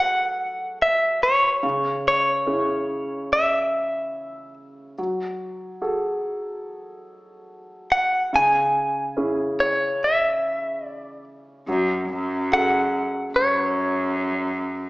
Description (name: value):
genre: acoustic folk-pop ballad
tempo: 72 BPM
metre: 4/4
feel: straight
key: F# minor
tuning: A4 = 440 Hz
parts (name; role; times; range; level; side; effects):
- direct-recorded clean electric guitar; melody; 0.0-14.2 s; C#5 to G#5; -20 LUFS; equal; harmonic tremolo
- warm concert grand piano; accompaniment; 0.0-14.9 s; C#3 to A4; -28 LUFS; equal; none
- rich cello; bass; 11.7-14.9 s; F#2; -25 LUFS; equal; none
room: wet recital hall reverb, RT60 1.3 s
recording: recorded in a church or concert hall, small speaker sound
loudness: -20 LUFS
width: side -22 dB against mid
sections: 0.0-14.9 A section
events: none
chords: 0.0 F#madd9; 1.6 C#m; 5.0 F#madd9; 8.3 C#m; 11.7 F#madd9